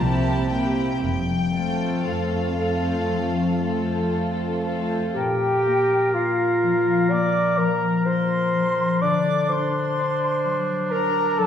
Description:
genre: classical, slow romantic movement for symphony orchestra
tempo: 57-64 BPM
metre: 4/4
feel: rubato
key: F major, Bb major from 5.1 s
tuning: A4 = 440 Hz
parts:
  - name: warm chamber violin section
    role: melody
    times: 0.0-4.1 s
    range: F5 to A5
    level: -32 LUFS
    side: left 2 dB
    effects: none
  - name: rich studio violin section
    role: second line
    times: 0.0-5.1 s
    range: E4 to A4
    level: -28 LUFS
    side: equal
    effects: none
  - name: dark chamber viola section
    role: accompaniment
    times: 0.0-5.1 s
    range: A3 to C4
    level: -30 LUFS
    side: right 2 dB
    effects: none
  - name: concert harp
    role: arpeggios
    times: 0.0-11.5 s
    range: Bb2 to F5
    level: -26 LUFS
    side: left 4 dB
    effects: none
  - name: dark chamber cello section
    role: bass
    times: 0.0-5.0 s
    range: F2 to C3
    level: -27 LUFS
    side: right 2 dB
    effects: none
  - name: warm chamber double bass section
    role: bass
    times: 0.0-1.9 s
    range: F1 to C2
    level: -28 LUFS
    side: right 2 dB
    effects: none
  - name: bright small flute group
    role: second line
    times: 5.1-11.5 s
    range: F5 to D6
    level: -26 LUFS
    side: left 2 dB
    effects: none
  - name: warm clarinet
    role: second line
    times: 5.1-11.5 s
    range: F4 to D5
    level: -22 LUFS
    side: equal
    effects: none
  - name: warm oboe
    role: second line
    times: 5.2-11.5 s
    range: D4 to Bb4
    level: -28 LUFS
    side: right 1 dB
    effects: none
room: wet recital hall reverb, RT60 1.5 s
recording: heard from further back in the room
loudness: -20 LUFS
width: side -9 dB against mid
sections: 0.0-5.1 A section; 5.1-11.5 B section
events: none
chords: 0.0 C7; 1.0 F; 5.1 Bb5; 9.0 D7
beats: 0.01 | 1.03 2.06 3.08 4.11 | 5.14 6.14 7.11 8.06 | 9.02 9.98 10.91

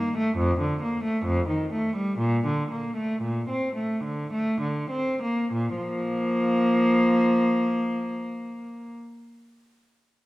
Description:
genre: classical, baroque-style suite movement for unaccompanied cello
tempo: 49-72 BPM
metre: 3/4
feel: rubato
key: Bb major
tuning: A4 = 441 Hz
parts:
  - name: rich cello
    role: solo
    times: 0.0-8.9 s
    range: F2 to C4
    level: -23 LUFS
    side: equal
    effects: none
room: wet recital hall reverb, RT60 1.5 s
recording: dark, warm production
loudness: -23 LUFS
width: side -18 dB against mid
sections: 0.0-5.5 A section; 5.5-9.1 B section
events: slowing down 0.0-5.5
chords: 0.4 Bb/F; 1.2 F7; 2.2 Bb; 5.5 Bb5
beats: 0.36 1.24 | 2.19 3.22 4.31 | 5.51 6.71 7.90

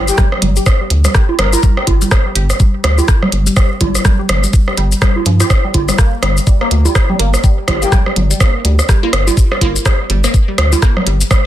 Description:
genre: minimal techno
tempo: 124 BPM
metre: 4/4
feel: swing 59% on 16ths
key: G minor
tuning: A4 = 440 Hz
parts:
  - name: rubbery square bass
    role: bass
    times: 0.0-11.2 s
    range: G1 to G2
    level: -13 LUFS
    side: equal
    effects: sidechain pumping
  - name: breathy flute-like synth lead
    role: melody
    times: 0.1-1.6, 7.8-7.9 s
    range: G4 to Bb4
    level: -21 LUFS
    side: left 3 dB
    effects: analog chorus, tape echo
  - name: minimal click drum kit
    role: drums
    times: 0.1-11.4 s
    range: hi-hat, rim click, shaker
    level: -19 LUFS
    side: left 2 dB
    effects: soft clipping on snare
  - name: resonant blip pluck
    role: riff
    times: 0.2-11.4 s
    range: F3 to G4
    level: -21 LUFS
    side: equal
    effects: phaser, sidechain pumping, dub echo
  - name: electronic kick drum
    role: drums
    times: 0.2-11.4 s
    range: none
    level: -12 LUFS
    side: equal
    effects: none
  - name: electronic congas and rim click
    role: percussion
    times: 0.2-11.4 s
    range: none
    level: -17 LUFS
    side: right 2 dB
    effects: soft clipping on snare
room: little or no reverb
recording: dense, heavily limited modern master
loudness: -10 LUFS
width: side -12 dB against mid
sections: 0.0-11.5 A section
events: none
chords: 0.0 G5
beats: 0.18 0.66 1.15 | 1.63 2.12 2.60 3.08 | 3.57 4.05 4.53 5.02 | 5.50 5.99 6.47 6.95 | 7.44 7.92 8.40 8.89 | 9.37 9.86 10.34 10.82 | 11.31

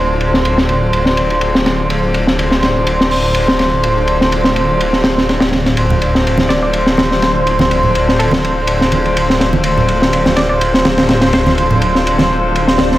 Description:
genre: breakbeat, breaks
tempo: 124 BPM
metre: 4/4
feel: swing 54% on 16ths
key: D minor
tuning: A4 = 441 Hz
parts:
  - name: dark analog pad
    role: sustained chords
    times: 0.0-13.0 s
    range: C5 to G6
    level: -27 LUFS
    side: left 3 dB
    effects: none
  - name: warm horn section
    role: stabs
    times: 0.0-13.0 s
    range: D4 to C5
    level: -16 LUFS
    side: equal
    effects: low-pass filter, ping-pong delay
  - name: phased detuned saw bass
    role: bass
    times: 0.0-13.0 s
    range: D1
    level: -17 LUFS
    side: equal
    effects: phaser
  - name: crunchy breakbeat drum kit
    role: drums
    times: 0.2-13.0 s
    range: hi-hat, ride cymbal, snare drum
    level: -15 LUFS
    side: equal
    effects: low-pass filter on kick, low-pass filter on cymbals, low-pass filter on hats, low-pass filter on snare, low-pass filter on room
  - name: congas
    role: percussion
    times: 5.9-12.9 s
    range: none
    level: -20 LUFS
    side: right 3 dB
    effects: none
  - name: hollow square pluck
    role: melody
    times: 6.5-11.7 s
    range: A4 to D5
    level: -23 LUFS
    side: equal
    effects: chorus, telephone sound, cassette tape, ping-pong delay
  - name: swell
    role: sound effects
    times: 12.7-13.0 s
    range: none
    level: -20 LUFS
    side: left 3 dB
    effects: none
room: light reverb, small room ambience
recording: none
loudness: -11 LUFS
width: side -15 dB against mid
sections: 0.0-13.0 A section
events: swell 12.7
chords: 0.0 Dm7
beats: 0.45 0.93 1.42 | 1.90 2.38 2.87 3.35 | 3.84 4.32 4.80 5.29 | 5.77 6.26 6.74 7.22 | 7.71 8.19 8.68 9.16 | 9.64 10.13 10.61 11.10 | 11.58 12.06 12.55

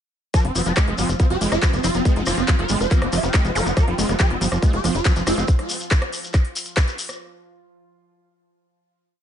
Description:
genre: psychedelic trance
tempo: 140 BPM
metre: 4/4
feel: straight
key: F minor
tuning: A4 = 440 Hz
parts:
  - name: swarming rave lead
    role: melody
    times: 0.3-5.4 s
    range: C4 to E5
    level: -25 LUFS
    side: right 1 dB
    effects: chorus, phaser, cassette tape, sidechain pumping, digital delay
  - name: bubbling stepped-filter texture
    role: sustained chords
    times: 0.6-5.5 s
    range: F3 to F4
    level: -31 LUFS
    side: equal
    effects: chorus, built-in reverb, sidechain pumping
  - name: screaming distorted acid line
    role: riff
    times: 0.3-5.4 s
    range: F3 to Ab3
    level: -27 LUFS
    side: moving between left 2 dB and right 4 dB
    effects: distortion, chorus, auto-pan, sidechain pumping, digital delay
  - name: big-room dance drum kit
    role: drums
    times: 0.3-7.2 s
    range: handclaps, hi-hat, rim click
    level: -26 LUFS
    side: equal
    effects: none
  - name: electronic kick drum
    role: drums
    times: 0.3-6.9 s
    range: none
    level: -18 LUFS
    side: equal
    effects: none
  - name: shekere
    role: percussion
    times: 0.3-7.2 s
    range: none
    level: -30 LUFS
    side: left 3 dB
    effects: none
  - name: tight sequencer bass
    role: bass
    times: 0.4-5.4 s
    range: F1 to G1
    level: -24 LUFS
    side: equal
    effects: tube saturation
  - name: metallic wobble bass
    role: second line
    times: 1.8-5.5 s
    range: Bb3 to C4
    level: -35 LUFS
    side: right 3 dB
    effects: lush chorus, sidechain pumping, high-pass filter, digital delay
  - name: zap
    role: sound effects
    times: 3.6-3.7 s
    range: none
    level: -30 LUFS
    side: equal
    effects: none
room: digital ambience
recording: nothing above 10.3 kHz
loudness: -18 LUFS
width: side -9 dB against mid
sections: 0.3-7.2 drop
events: drop 0.3-7.2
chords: 0.3 F5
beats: | 0.34 0.77 1.20 1.62 | 2.05 2.48 2.91 3.34 | 3.77 4.20 4.62 5.05 | 5.48 5.91 6.34 6.77

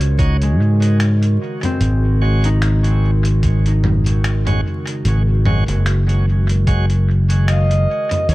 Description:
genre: ambient dub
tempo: 74 BPM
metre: 4/4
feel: swing 56% on 16ths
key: Ab mixolydian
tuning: A4 = 440 Hz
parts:
  - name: mellow clarinet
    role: melody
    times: 0.0-0.1, 7.5-8.3 s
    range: Db5 to Eb5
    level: -24 LUFS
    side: right 1 dB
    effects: dub echo
  - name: warbly tape-like pad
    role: sustained chords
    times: 0.0-8.3 s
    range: Db3 to Bb4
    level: -26 LUFS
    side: right 1 dB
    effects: chorus, built-in reverb
  - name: concert harp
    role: arpeggios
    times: 0.0-8.3 s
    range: Ab3 to Ab5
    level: -28 LUFS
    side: left 3 dB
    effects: dub echo
  - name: fingered electric bass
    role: bass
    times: 0.0-8.3 s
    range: Gb1 to Ab2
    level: -14 LUFS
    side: equal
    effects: none
  - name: lo-fi sampler-style drum kit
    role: drums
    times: 0.0-8.3 s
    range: finger snaps, hi-hat, toms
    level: -25 LUFS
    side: equal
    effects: overdrive, dub echo
  - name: bright tonewheel organ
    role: stabs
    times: 0.2-6.9 s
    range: Gb3 to Db5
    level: -30 LUFS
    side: right 3 dB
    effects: overdrive, stopped rotary speaker, dub echo
  - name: electronic kick drum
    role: drums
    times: 0.2-6.9 s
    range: none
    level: -19 LUFS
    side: equal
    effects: none
room: little or no reverb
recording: echo-heavy mix, vinyl crackle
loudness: -14 LUFS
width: side -19 dB against mid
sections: 0.0-8.3 A section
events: none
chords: 0.0 Ebm7; 1.8 Ab7sus4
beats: 0.19 1.00 | 1.81 2.62 3.43 4.24 | 5.05 5.86 6.67 7.49 | 8.30

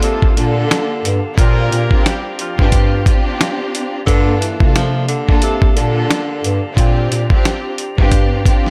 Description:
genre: hip hop, boom-bap hip-hop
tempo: 89 BPM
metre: 4/4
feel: swing 58% on 16ths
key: G minor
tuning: A4 = 440 Hz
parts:
  - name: breathy tenor saxophone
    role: melody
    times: 0.0-6.7 s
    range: C3 to F3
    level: -25 LUFS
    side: equal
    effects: high-pass filter, low-pass filter, delay
  - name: warm symphonic string section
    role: accompaniment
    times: 0.0-8.7 s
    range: Bb3 to A4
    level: -23 LUFS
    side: equal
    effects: high-pass filter, low-pass filter
  - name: tonewheel organ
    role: sustained chords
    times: 0.0-8.7 s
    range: Bb3 to Bb5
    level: -33 LUFS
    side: equal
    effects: overdrive, stopped rotary speaker, high-pass filter, low-pass filter
  - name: warm horn section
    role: stabs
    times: 0.0-3.0 s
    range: F3 to Bb4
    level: -28 LUFS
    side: equal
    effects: high-pass filter, low-pass filter, delay
  - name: dusty soul sampler-style drum kit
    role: drums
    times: 0.0-8.7 s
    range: hi-hat, kick drum, snare drum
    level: -16 LUFS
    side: equal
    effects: none
  - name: dark bass clarinet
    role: bass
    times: 0.4-8.6 s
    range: G2 to C3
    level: -20 LUFS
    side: equal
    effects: none
room: little or no reverb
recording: none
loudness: -15 LUFS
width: mono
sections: 0.0-8.7 A section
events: none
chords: 0.0 Gm9; 1.4 Bb69; 4.1 Gm9; 6.8 Bb69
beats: 0.03 0.70 | 1.38 2.05 2.73 3.40 | 4.07 4.75 5.42 6.10 | 6.77 7.44 8.12

